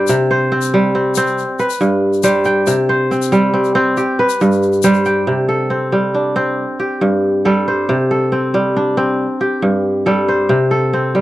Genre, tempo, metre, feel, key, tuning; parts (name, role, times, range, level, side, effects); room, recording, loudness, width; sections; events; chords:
west african traditional, West African string and xylophone music; 92 BPM (dotted quarters); 12/8; straight; A4 = 439 Hz
kora; arpeggios; 0.0-11.2 s; G2 to G5; -13 LUFS; equal
tube shaker; percussion; 0.1-5.1 s; -27 LUFS; left 16 dB
small room ambience; dry, close 1970s-style studio recording; -13 LUFS; side -16 dB against mid
0.0-5.3 A section; 5.3-11.2 B section
0.1 C5; 1.4 G; 2.7 C5; 4.0 G; 5.3 C5; 6.6 G5; 7.9 C5; 9.2 G5; 10.5 C5